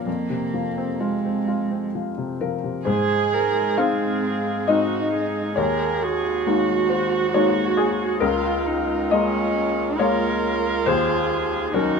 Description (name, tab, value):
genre	neoclassical piano and strings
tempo	64-70 BPM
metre	3/4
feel	rubato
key	unclear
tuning	A4 = 439 Hz
part	dark cello	second line	0.0-12.0 s	Ab3 to Ab4	-24 LUFS	right 7 dB	none
part	felt-muted upright piano	accompaniment	0.0-12.0 s	Db2 to F5	-22 LUFS	left 4 dB	none
part	warm viola	accompaniment	2.9-12.0 s	F4 to Bb4	-26 LUFS	right 4 dB	none
room	light reverb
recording	minimal, uncompressed stereo recording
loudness	-20 LUFS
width	side -5 dB against mid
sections	0.0-2.9 A section; 2.9-12.0 B section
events	none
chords	0.1 Fm; 2.9 Ab; 5.6 Eb7sus4; 8.2 Bbm7/Db; 10.9 Ebm7